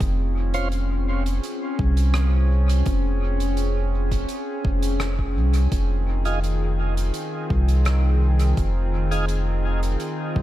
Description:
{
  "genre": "ambient dub",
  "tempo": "84 BPM",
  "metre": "4/4",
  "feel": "straight",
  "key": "unclear",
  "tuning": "A4 = 440 Hz",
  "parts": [
    { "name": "warbly tape-like pad", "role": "sustained chords", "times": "0.0-10.4 s", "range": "Eb3 to Ab4", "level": "-28 LUFS", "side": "equal", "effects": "chorus, built-in reverb" },
    { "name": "warm sub bass", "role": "bass", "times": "0.0-10.4 s", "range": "F1 to C2", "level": "-20 LUFS", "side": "equal", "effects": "none" },
    { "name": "electronic kick drum", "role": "drums", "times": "0.0-10.4 s", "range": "none", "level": "-25 LUFS", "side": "equal", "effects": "overdrive" },
    { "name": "soft-mallet drum kit", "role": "drums", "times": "0.0-10.1 s", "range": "hi-hat, rim click", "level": "-35 LUFS", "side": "right 2 dB", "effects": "dub echo" },
    { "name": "tonewheel organ", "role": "stabs", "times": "0.5-0.7, 6.3-9.3 s", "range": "Db4 to C5", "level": "-32 LUFS", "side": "right 2 dB", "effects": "slow rotary speaker, dub echo" }
  ],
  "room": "small room ambience",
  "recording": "none",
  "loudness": "-20 LUFS",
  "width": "side -14 dB against mid",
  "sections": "0.0-10.4 A section",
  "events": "none",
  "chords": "0.0 Dbmaj7/F; 5.7 Fm7"
}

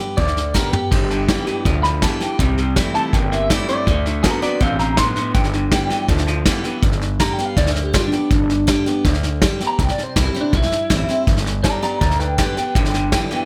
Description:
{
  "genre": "rockabilly",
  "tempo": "162 BPM",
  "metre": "4/4",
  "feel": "straight",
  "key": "G mixolydian",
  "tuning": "A4 = 440 Hz",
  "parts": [
    { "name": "picked steel-string acoustic guitar", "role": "accompaniment", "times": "0.0-13.5 s", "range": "G2 to G4", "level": "-27 LUFS", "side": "equal", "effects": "none" },
    { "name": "upright bass", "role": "bass", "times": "0.0-13.3 s", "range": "G1 to D2", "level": "-24 LUFS", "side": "equal", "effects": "none" },
    { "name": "vintage brush drum kit", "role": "drums", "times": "0.0-13.4 s", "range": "crash cymbal, hi-hat, kick drum, snare drum, toms", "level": "-22 LUFS", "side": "equal", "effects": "none" },
    { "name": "electric guitar through a small old amp", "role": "melody", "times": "0.2-13.5 s", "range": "D4 to C6", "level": "-24 LUFS", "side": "equal", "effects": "analog chorus, analog delay" },
    { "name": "electric guitar through a small old amp", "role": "riff", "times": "0.9-6.8, 12.8-13.5 s", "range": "G2 to C4", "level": "-27 LUFS", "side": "equal", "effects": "none" }
  ],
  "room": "light reverb",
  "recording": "none",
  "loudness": "-18 LUFS",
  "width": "mono",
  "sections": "0.0-6.8 A section; 6.8-13.5 A section",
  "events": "clean electric guitar solo 0.0-13.5; drum fill 0.5-0.9",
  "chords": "0.0 G; 2.4 C; 3.9 D7; 5.4 G; 9.8 C; 11.3 G"
}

